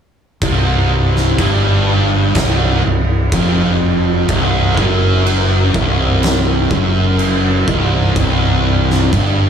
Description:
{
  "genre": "stoner and doom metal",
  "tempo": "62 BPM",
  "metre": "4/4",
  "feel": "straight",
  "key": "unclear",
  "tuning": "A4 = 440 Hz",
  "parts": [
    { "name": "thick fuzz guitar", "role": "riff", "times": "0.4-9.5 s", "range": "C2 to G2", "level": "-15 LUFS", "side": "equal", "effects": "distortion" },
    { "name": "growling fingered electric bass", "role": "bass", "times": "0.4-9.5 s", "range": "C1 to G1", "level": "-16 LUFS", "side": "equal", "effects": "overdrive" },
    { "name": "oversized low-tuned drum kit", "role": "drums", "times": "0.4-9.4 s", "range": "crash cymbal, kick drum, snare drum", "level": "-18 LUFS", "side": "right 1 dB", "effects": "none" }
  ],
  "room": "little or no reverb",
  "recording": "small room ambience",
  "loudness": "-12 LUFS",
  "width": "side -8 dB against mid",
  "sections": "0.4-9.5 A section",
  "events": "none",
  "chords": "0.4 C5"
}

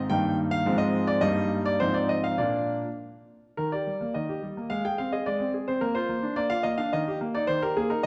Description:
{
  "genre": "classical-period piano sonatina",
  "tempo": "100-110 BPM",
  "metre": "2/4",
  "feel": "rubato",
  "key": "Eb major",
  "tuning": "A4 = 438 Hz",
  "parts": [
    { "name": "bright concert grand piano", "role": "solo", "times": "0.0-8.1 s", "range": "G2 to G5", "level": "-27 LUFS", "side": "equal", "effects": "none" }
  ],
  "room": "wet recital hall reverb, RT60 1.6 s",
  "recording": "dark, warm production",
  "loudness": "-27 LUFS",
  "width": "mono",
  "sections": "0.0-3.6 A section; 3.6-8.1 B section",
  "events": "none",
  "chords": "0.1 Eb/G; 0.7 Fm/Ab; 1.2 Eb/G; 1.8 Fm7/Ab; 2.4 Bb; 3.6 Eb; 4.7 Ab; 5.8 Bb; 6.9 Eb"
}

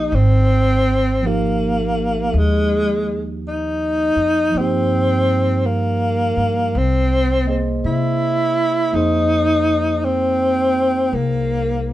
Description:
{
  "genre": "jazz ballad",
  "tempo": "54 BPM",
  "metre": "4/4",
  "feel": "swing 66% on 8ths",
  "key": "F minor",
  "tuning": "A4 = 440 Hz",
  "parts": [
    { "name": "mellow tenor saxophone", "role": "melody", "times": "0.0-11.9 s", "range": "Ab3 to E4", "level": "-18 LUFS", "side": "equal", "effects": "none" },
    { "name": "tine electric piano", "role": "accompaniment", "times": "0.0-11.9 s", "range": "F3 to D#5", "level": "-25 LUFS", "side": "right 3 dB", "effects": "none" },
    { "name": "upright bass", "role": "bass", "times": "0.0-11.9 s", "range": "Ab1 to C3", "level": "-21 LUFS", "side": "equal", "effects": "none" }
  ],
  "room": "light reverb",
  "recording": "band playing live in one room",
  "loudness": "-15 LUFS",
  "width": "side -14 dB against mid",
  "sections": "0.0-11.9 A section",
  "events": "none",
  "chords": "0.1 Abmaj9; 4.5 Eb69/G; 6.7 C7alt; 8.9 Fm7"
}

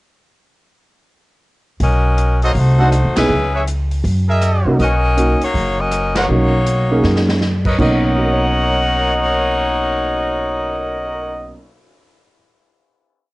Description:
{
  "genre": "jazz, big band swing",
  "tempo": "161 BPM",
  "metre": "4/4",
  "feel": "swing 64% on 8ths",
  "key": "B major",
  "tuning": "A4 = 440 Hz",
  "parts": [
    { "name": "edgy saxophone section", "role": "melody", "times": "1.8-11.5 s", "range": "A3 to F#5", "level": "-19 LUFS", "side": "left 2 dB", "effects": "cassette tape" },
    { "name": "upright bass", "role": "bass", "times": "1.8-11.5 s", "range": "F#1 to F#2", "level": "-17 LUFS", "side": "equal", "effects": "none" },
    { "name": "swinging big-band drum kit", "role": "drums", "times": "1.8-10.7 s", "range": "crash cymbal, cymbal swell, hi-hat, kick drum, ride cymbal, rim click, snare drum", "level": "-24 LUFS", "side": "equal", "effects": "cassette tape" },
    { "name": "bright trumpet section", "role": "stabs", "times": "2.4-11.5 s", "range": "F#4 to Gb5", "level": "-21 LUFS", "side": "right 1 dB", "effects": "cassette tape" },
    { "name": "warm baby grand piano", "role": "accompaniment", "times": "2.8-12.5 s", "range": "B2 to F#6", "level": "-20 LUFS", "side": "right 2 dB", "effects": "cassette tape" }
  ],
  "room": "little or no reverb",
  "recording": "home recording on cassette, nothing above 10.7 kHz",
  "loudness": "-14 LUFS",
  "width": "side -20 dB against mid",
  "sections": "1.8-7.8 A section; 7.8-10.8 final chord",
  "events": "band accent 3.1, 6.1; drum fill 7.0-7.4",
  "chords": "1.8 Bmaj9; 2.5 Cdim7; 3.3 C#m7; 4.0 F#13; 4.8 Bmaj9"
}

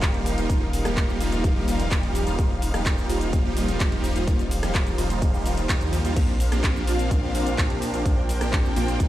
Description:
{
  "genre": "EDM, festival progressive house",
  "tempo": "127 BPM",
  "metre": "4/4",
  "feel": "straight",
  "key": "Eb major",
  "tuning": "A4 = 445 Hz",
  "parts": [
    { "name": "dark studio string section", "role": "sustained chords", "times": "0.0-9.1 s", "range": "D4 to G5", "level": "-32 LUFS", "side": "equal", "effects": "sidechain pumping" },
    { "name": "supersaw chords", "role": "riff", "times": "0.0-9.1 s", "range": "F3 to G4", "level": "-28 LUFS", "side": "right 1 dB", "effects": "phaser, sidechain pumping, tape echo" },
    { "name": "wide detuned saw bass", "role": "bass", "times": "0.0-9.1 s", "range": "Eb1 to Eb2", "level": "-27 LUFS", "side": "equal", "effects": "chorus, sidechain pumping" },
    { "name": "big-room dance drum kit", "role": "drums", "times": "0.0-9.1 s", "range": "cabasa, crash cymbal, handclaps, hi-hat, rim click", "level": "-31 LUFS", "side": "equal", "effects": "none" },
    { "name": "electronic kick drum", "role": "drums", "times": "0.0-9.1 s", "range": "none", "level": "-23 LUFS", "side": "equal", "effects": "none" }
  ],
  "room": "digital ambience",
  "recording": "played on a big sound system in a bare room, large studio reverb",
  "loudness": "-21 LUFS",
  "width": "side -14 dB against mid",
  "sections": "0.0-9.1 A section",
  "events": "none",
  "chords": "0.0 Ebadd9; 6.2 Bbadd9"
}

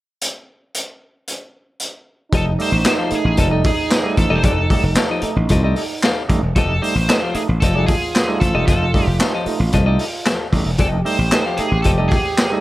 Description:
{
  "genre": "funk",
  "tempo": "113 BPM",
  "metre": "4/4",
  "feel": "straight",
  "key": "F mixolydian",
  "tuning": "A4 = 441 Hz",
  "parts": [
    { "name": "raw garage drum kit", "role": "drums", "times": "0.2-12.5 s", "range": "handclaps, hi-hat, kick drum, snare drum", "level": "-19 LUFS", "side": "equal", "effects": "none" },
    { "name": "clear trombone", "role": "second line", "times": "2.3-12.6 s", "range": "Eb4 to G4", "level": "-25 LUFS", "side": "right 4 dB", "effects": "none" },
    { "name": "clean electric guitar", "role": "accompaniment", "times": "2.3-12.2 s", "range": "G4 to F5", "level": "-25 LUFS", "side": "left 5 dB", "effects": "none" },
    { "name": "percussive tonewheel organ", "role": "stabs", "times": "2.3-12.6 s", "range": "F3 to Eb4", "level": "-25 LUFS", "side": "right 2 dB", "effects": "overdrive, slapback echo" },
    { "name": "slap bass", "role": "bass", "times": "2.3-12.1 s", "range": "E1 to C2", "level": "-18 LUFS", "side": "equal", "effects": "none" },
    { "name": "nasal lead guitar with a parked wah", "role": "melody", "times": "2.4-12.6 s", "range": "Ab4 to C5", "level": "-23 LUFS", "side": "equal", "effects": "overdrive" }
  ],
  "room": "little or no reverb",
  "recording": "none",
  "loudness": "-15 LUFS",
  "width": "side -16 dB against mid",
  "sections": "0.2-2.3 A section; 2.3-12.6 B section",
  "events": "none",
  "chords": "0.2 N.C.; 2.3 F9"
}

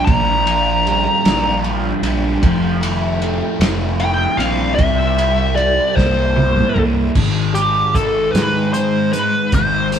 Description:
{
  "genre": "psychedelic rock",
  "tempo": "51 BPM (dotted quarters)",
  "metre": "6/8",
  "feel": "straight",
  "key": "C mixolydian",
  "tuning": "A4 = 440 Hz",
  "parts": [
    { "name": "fuzz lead guitar", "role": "melody", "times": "0.0-10.0 s", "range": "G4 to Bb5", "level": "-17 LUFS", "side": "left 1 dB", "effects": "wah, distortion" },
    { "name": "fuzz guitar", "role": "riff", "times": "0.0-10.0 s", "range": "Ab2 to Bb4", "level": "-19 LUFS", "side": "equal", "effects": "distortion, phaser" },
    { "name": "fuzz picked electric bass", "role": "bass", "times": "0.1-10.0 s", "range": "F1 to Ab2", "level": "-20 LUFS", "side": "equal", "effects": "overdrive" },
    { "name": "cloth-damped thuddy drum kit", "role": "drums", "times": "0.1-10.0 s", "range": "crash cymbal, hi-hat, kick drum, ride cymbal, snare drum, toms", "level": "-20 LUFS", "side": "right 1 dB", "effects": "none" }
  ],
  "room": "wet stone room reverb, RT60 1.3 s",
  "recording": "band playing live in one room",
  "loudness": "-14 LUFS",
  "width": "side -8 dB against mid",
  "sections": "0.0-7.2 A section; 7.2-10.0 B section",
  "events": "drum fill 6.0-7.2; lead electric guitar solo 7.2-10.0",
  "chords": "0.0 Bb6; 2.4 Fmaj7; 4.8 C7; 7.2 Ab"
}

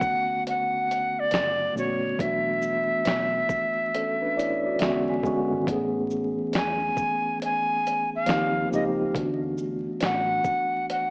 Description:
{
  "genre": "lo-fi hip hop",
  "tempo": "69 BPM",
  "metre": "4/4",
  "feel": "swing 64% on 16ths",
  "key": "unclear",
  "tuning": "A4 = 440 Hz",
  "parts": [
    { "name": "breathy jazz flute", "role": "melody", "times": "0.0-11.1 s", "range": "C#5 to G#5", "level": "-25 LUFS", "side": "equal", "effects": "low-pass filter" },
    { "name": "mellow tine electric piano", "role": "accompaniment", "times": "0.0-11.1 s", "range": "D3 to G#5", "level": "-28 LUFS", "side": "equal", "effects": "medium stereo tremolo, cassette tape, low-pass filter" },
    { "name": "dusty soul sampler-style drum kit", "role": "drums", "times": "0.0-11.1 s", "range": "finger snaps, hi-hat, kick drum, shaker, snare drum", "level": "-30 LUFS", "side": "equal", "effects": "none" },
    { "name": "vintage muted fingered electric bass", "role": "bass", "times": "1.3-10.4 s", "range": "F#1 to E2", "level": "-36 LUFS", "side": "equal", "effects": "none" }
  ],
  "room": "moderate plate reverb, RT60 2.3 s",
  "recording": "worn, warbling old tape, cassette tape, vinyl crackle, warbly pitch drift, small speaker sound",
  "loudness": "-23 LUFS",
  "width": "side -35 dB against mid",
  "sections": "0.0-11.1 A section",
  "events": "none",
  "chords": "0.0 Bm9; 2.2 E7sus4/B; 4.8 E13; 5.7 Amaj9; 8.3 D#69; 9.1 D69"
}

